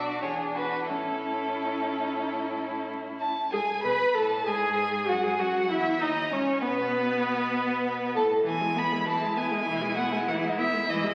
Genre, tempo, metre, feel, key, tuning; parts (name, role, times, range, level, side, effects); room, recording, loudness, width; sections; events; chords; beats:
quick classical-period movement for string quartet; 90-101 BPM; 4/4; rubato; A major, E major from 3.5 s; A4 = 440 Hz
clear violin; melody; 0.0-11.1 s; A4 to B5; -32 LUFS; equal
rich violin; second line; 0.0-11.1 s; B3 to B4; -34 LUFS; equal
rich viola; accompaniment; 0.0-11.1 s; E3 to B4; -32 LUFS; equal
rich cello; bass; 0.0-11.1 s; C#2 to B2; -40 LUFS; equal
wet recital hall reverb, RT60 1.4 s; very old 78 rpm record, vinyl crackle; -27 LUFS; mono
0.0-3.5 A section; 3.5-11.1 B section
0.2 E7; 0.9 A; 3.5 E/G#; 6.0 B7; 8.5 E
0.23 | 0.89 1.55 2.21 2.88 | 3.53 4.15 4.78 5.40 | 6.01 6.63 7.24 7.85 | 8.46 9.07 9.67 10.28 | 10.89